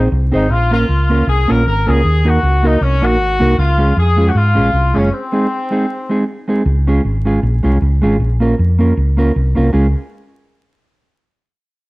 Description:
ska; 156 BPM; 4/4; swing 56% on 8ths; Db major; A4 = 439 Hz
mellow electric guitar; accompaniment; 0.0-9.9 s; Ab3 to C5; -17 LUFS; right 1 dB; spring reverb
hollow-body short-scale fingered electric bass; bass; 0.0-9.9 s; Gb1 to Ab2; -14 LUFS; equal
clear horn section; melody; 0.3-6.2 s; C4 to Bb4; -18 LUFS; left 2 dB
light reverb; vinyl crackle; -12 LUFS; side -21 dB against mid
0.0-6.7 A section; 6.7-9.7 B section; 9.7-11.3 C section
break 5.1-6.7
0.0 Ab; 0.5 Bbm; 2.0 Ebm; 3.6 Db; 5.1 Ab; 6.7 Db; 8.2 Bbm; 9.7 Db
0.12 | 0.50 0.89 1.27 1.66 | 2.04 2.42 2.81 3.19 | 3.58 3.96 4.35 4.73 | 5.12 5.50 5.89 6.27 | 6.66 7.04 7.42 7.81 | 8.19 8.58 8.96 9.35 | 9.73

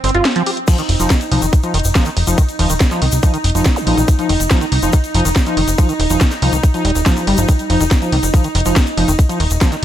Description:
psychedelic trance; 141 BPM; 4/4; straight; A4 = 440 Hz
pulsing gated texture; sustained chords; 0.0-9.8 s; C4 to Eb4; -20 LUFS; equal; chorus, built-in reverb, sidechain pumping
liquid acid bass; riff; 0.0-9.8 s; Eb3 to G4; -21 LUFS; equal; chorus, auto-pan, cassette tape, sidechain pumping, dub echo
plucky analog bass; bass; 0.0-9.8 s; Eb1 to C2; -17 LUFS; equal
drum and bass drum kit; drums; 0.0-9.8 s; crash cymbal, hi-hat, snare drum; -21 LUFS; equal
electronic kick drum; drums; 0.7-9.7 s; -12 LUFS; equal
egg shaker; percussion; 0.7-9.8 s; -26 LUFS; left 4 dB
zap; sound effects; 3.8-3.9 s; -26 LUFS; equal
light reverb; -12 LUFS; side -11 dB against mid
0.0-9.8 A section
0.0 F5
0.25 | 0.68 1.10 1.53 1.95 | 2.38 2.81 3.23 3.66 | 4.08 4.51 4.93 5.36 | 5.78 6.21 6.63 7.06 | 7.49 7.91 8.34 8.76 | 9.19 9.61

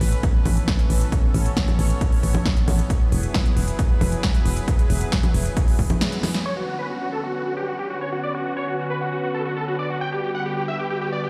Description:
uplifting trance; 135 BPM; 4/4; straight; B minor; A4 = 442 Hz
lush unison pad; sustained chords; 0.0-11.3 s; D3 to C#5; -31 LUFS; equal; chorus, sidechain pumping
solid FM bass; bass; 0.0-5.9 s; E1 to A1; -23 LUFS; equal; sidechain pumping
big-room dance drum kit; drums; 0.0-6.4 s; congas, hi-hat, snare drum; -29 LUFS; equal; overdrive
electronic kick drum; drums; 0.2-5.9 s; -22 LUFS; equal
big supersaw lead; melody; 6.5-11.3 s; F#4 to G5; -28 LUFS; equal; sidechain pumping, low-pass filter, digital delay
light reverb; played on a big sound system in a bare room, stone room reverb; -22 LUFS; mono
0.0-6.5 A section; 6.5-11.3 B section
break 6.0-6.5; band accent 6.0; drum fill 6.2; filter sweep on supersaw synth 6.5-11.3
0.0 Aadd9; 2.9 Eadd9; 6.5 Bmadd9; 10.0 Gmaj7
0.23 0.68 | 1.12 1.57 2.01 2.46 | 2.90 3.35 3.79 4.23 | 4.68 5.12 5.57 6.01 | 6.46 6.90 7.34 7.79 | 8.23 8.68 9.12 9.57 | 10.01 10.46 10.90

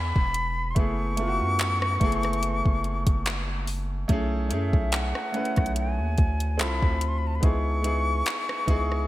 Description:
contemporary R&B; 72 BPM; 4/4; swing 54% on 16ths; F# dorian; A4 = 445 Hz
concert flute; melody; 0.0-9.1 s; E5 to C#6; -30 LUFS; left 2 dB; digital delay
clear grand piano; accompaniment; 0.0-9.1 s; A3 to B4; -31 LUFS; equal
long sustained 808-style bass; bass; 0.0-9.1 s; E1 to F#2; -28 LUFS; equal
smooth R&B drum kit; drums; 0.2-9.1 s; handclaps, hi-hat, kick drum, rim click; -25 LUFS; equal; gated reverb
light reverb; bright 1980s-style digital production; -23 LUFS; side -15 dB against mid
0.0-9.1 A section
0.0 E69; 0.8 F#m11; 4.1 B13sus4; 6.6 Dm9; 7.4 C#m9
| 0.76 1.60 2.43 3.26 | 4.10 4.93 5.76 6.60 | 7.43 8.26

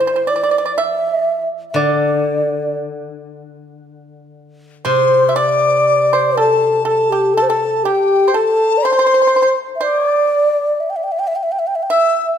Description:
chinese traditional, Chinese chamber ensemble; 60 BPM; 4/4; rubato; D shang mode; A4 = 441 Hz
breathy hollow low xiao; melody; 0.0-12.3 s; G4 to G5; -15 LUFS; equal
pipa; second line; 0.0-12.3 s; G4 to E5; -21 LUFS; right 5 dB
steel-string zither; accompaniment; 0.0-7.9 s; C3 to E3; -24 LUFS; left 5 dB
dizi; second line; 4.9-12.3 s; G5 to E6; -19 LUFS; left 7 dB
moderate recital hall reverb, RT60 1.8 s; minimal, uncompressed stereo recording; -13 LUFS; side -8 dB against mid
0.0-4.9 A section; 4.9-12.4 B section
| 0.78 1.77 2.78 3.82 | 4.86 5.87 6.87 7.86 | 8.85 9.83 10.81 11.80

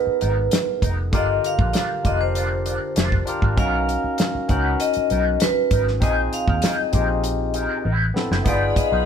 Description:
lush 1970s-style soul; 98 BPM; 4/4; straight; A4 = 440 Hz
vibraphone with hard mallets; melody; 0.0-9.1 s; Cb5 to F#5; -23 LUFS; left 1 dB
barky tine electric piano; accompaniment; 0.0-9.1 s; D3 to Cb5; -26 LUFS; left 1 dB
electric guitar with an envelope filter; riff; 0.1-9.1 s; G3 to B4; -29 LUFS; right 1 dB; wah
vintage muted fingered electric bass; bass; 0.1-9.1 s; F1 to Eb2; -24 LUFS; equal
damped 70s drum kit; drums; 0.2-8.9 s; hi-hat, kick drum, snare drum; -22 LUFS; equal
dark studio string section; second line; 8.5-9.1 s; Ab4 to B5; -29 LUFS; equal
light reverb; band playing live in one room; -18 LUFS; side -7 dB against mid
0.0-8.5 A section
drum fill 7.8-8.5
0.0 Abmadd9; 1.1 Fsus4; 3.6 Bmaj7; 6.0 Bb7sus4; 7.8 Amadd9; 8.5 G7b9b13
0.52 | 1.13 1.74 2.35 2.96 | 3.57 4.18 4.79 5.41 | 6.02 6.63 7.24 7.85 | 8.46

